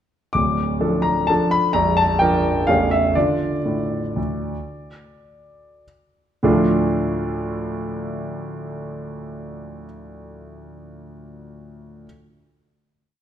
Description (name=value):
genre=classical, piano waltz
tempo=99-136 BPM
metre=3/4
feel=rubato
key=D minor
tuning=A4 = 440 Hz
part: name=warm concert grand piano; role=solo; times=0.3-12.1 s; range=A0 to D6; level=-19 LUFS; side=equal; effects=none
room=wet recital hall reverb, RT60 1.5 s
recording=none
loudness=-18 LUFS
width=side -9 dB against mid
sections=0.3-6.4 A section; 6.4-9.9 final chord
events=slowing down 2.4-6.4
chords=0.3 Dm; 1.8 Bb; 2.7 A7; 3.2 Dm